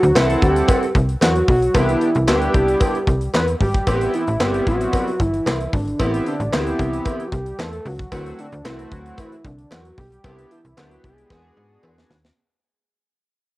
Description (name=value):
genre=early-eighties boogie funk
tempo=113 BPM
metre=4/4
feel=straight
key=A dorian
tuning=A4 = 439 Hz
part: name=fat analog lead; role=melody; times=0.0-12.1 s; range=D4 to B4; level=-22 LUFS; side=equal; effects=cassette tape
part: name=slap-like FM bass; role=bass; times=0.0-12.3 s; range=G1 to G#2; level=-22 LUFS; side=equal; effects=tube saturation
part: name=modern studio drum kit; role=drums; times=0.0-12.4 s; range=handclaps, hi-hat, kick drum, snare drum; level=-21 LUFS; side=equal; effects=cassette tape
part: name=chorused polysynth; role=accompaniment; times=0.1-12.2 s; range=G3 to F#5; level=-25 LUFS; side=equal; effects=cassette tape
part: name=cowbell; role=percussion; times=0.2-12.0 s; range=none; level=-25 LUFS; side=equal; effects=none
room=light reverb, studio ambience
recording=home recording on cassette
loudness=-16 LUFS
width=side -18 dB against mid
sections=0.0-12.4 A section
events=fade-out 0.0-12.4; drum fill 11.3-12.4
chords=0.0 D9; 1.7 Cmaj9; 3.9 Am7; 8.1 D9; 10.2 Cmaj9; 11.3 E9